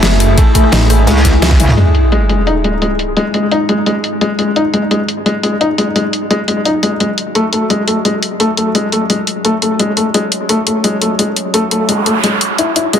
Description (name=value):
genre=dark technical drum and bass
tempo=172 BPM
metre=4/4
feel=straight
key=unclear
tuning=A4 = 440 Hz
part: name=deep dark ambient pad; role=sustained chords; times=0.0-13.0 s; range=G#3 to G#5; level=-20 LUFS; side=left 1 dB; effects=chorus, built-in reverb, sidechain pumping
part: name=felt-muted upright piano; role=arpeggios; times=0.0-13.0 s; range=G#3 to E4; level=-14 LUFS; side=left 2 dB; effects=sidechain pumping, tape echo
part: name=snarling distorted saw bass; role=bass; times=0.0-1.1 s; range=F#1 to A1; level=-11 LUFS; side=equal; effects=distortion, tube saturation, sidechain pumping
part: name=crunchy breakbeat drum kit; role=drums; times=0.0-1.8 s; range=ride cymbal, snare drum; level=-24 LUFS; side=right 1 dB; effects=high-pass filter on cymbals, high-pass filter on hats, high-pass filter on snare, high-pass filter on room
part: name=dubstep drum kit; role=drums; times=0.0-13.0 s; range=hi-hat, rim click, snare drum, toms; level=-16 LUFS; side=left 1 dB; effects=overdrive, low-pass filter on hats, low-pass filter on snare, low-pass filter on toms
part: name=electronic kick drum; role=drums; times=0.4-1.6 s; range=none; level=-10 LUFS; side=right 1 dB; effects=overdrive
part: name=metallic wobble bass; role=bass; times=1.1-1.8 s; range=C#2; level=-12 LUFS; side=right 1 dB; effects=chorus, tube saturation
part: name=sub drop and noise sweep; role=sound effects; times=1.8-3.2, 11.7-12.9 s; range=none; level=-15 LUFS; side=right 1 dB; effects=none
room=light reverb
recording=dense, heavily limited modern master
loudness=-11 LUFS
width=side -8 dB against mid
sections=0.0-1.8 A section; 1.8-13.0 B section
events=drop 0.0-1.8; band accent 1.4; drum fill 1.5; impact 1.8-3.2; filter sweep on drum 1.8-13.0; filter sweep on ambient pad 1.8-13.0; noise sweep 11.7-12.9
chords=0.0 F#m7; 1.8 G#5; 7.4 F#m